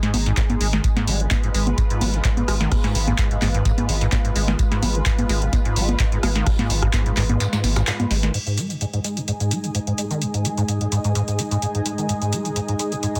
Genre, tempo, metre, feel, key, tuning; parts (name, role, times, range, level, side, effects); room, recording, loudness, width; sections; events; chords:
acid house; 128 BPM; 4/4; swing 53% on 16ths; G# dorian; A4 = 438 Hz
lush unison pad; sustained chords; 0.0-13.2 s; G#3 to G#5; -31 LUFS; equal; chorus, phaser, sidechain pumping
acid bass, saw; riff; 0.0-13.2 s; G#2 to G#3; -27 LUFS; equal; analog chorus, tape echo
booming analog drum machine; drums; 0.0-13.2 s; cabasa, congas, crash cymbal, handclaps, hi-hat, rim click, snare drum; -27 LUFS; equal
round analog bass; bass; 0.1-8.3 s; G#1; -24 LUFS; equal; sidechain pumping
dusty soul sampler-style drum kit; drums; 0.1-8.2 s; hi-hat, snare drum, tambourine; -38 LUFS; equal
electronic kick drum; drums; 0.4-7.0 s; -24 LUFS; equal
granular cloud pad; texture; 8.9-13.2 s; G#3 to D#6; -34 LUFS; equal; built-in reverb, sidechain pumping
light reverb; dense, heavily limited modern master; -21 LUFS; mono
0.0-8.3 A section; 8.3-13.2 B section
kick drops out 7.4-8.3; band accent 7.9; filter sweep on acid bass 8.3-13.2
0.0 G#5